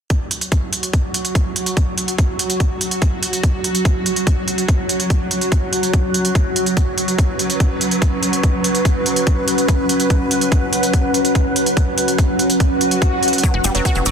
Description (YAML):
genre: psychedelic trance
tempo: 144 BPM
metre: 4/4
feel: straight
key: unclear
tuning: A4 = 440 Hz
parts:
  - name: swarming drone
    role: sustained chords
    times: 0.4-14.1 s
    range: F#3 to B4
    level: -21 LUFS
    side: right 2 dB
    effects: built-in reverb, sidechain pumping
  - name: electronic hi-hat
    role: drums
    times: 0.1-14.1 s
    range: none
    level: -21 LUFS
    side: right 2 dB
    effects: none
  - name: electronic kick drum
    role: drums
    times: 0.1-13.9 s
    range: none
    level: -18 LUFS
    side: equal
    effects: none
  - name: deep dark ambient pad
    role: texture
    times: 1.6-14.1 s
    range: C#4 to F#6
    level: -22 LUFS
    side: left 1 dB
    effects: chorus, built-in reverb, sidechain pumping
  - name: swell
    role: sound effects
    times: 12.7-13.4 s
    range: none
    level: -22 LUFS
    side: left 2 dB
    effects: none
  - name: wide unison pluck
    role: riff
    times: 13.4-14.1 s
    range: F#3 to F#4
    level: -20 LUFS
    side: left 1 dB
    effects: auto-pan, sidechain pumping, tape echo
  - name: cabasa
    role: percussion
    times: 13.4-14.1 s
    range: none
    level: -25 LUFS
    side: left 2 dB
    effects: none
  - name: tight sequencer bass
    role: bass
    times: 13.5-14.1 s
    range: F#1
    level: -20 LUFS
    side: equal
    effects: none
room: light reverb, digital ambience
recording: dense, heavily limited modern master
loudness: -15 LUFS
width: side -7 dB against mid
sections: 0.1-14.1 A section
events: swell 12.7-13.4; drum fill 13.2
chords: 0.1 F#5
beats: | 0.10 0.52 0.94 1.35 | 1.77 2.19 2.60 3.02 | 3.44 3.85 4.27 4.68 | 5.10 5.52 5.93 6.35 | 6.77 7.18 7.60 8.02 | 8.44 8.85 9.27 9.69 | 10.10 10.52 10.94 11.35 | 11.77 12.19 12.60 13.02 | 13.44 13.85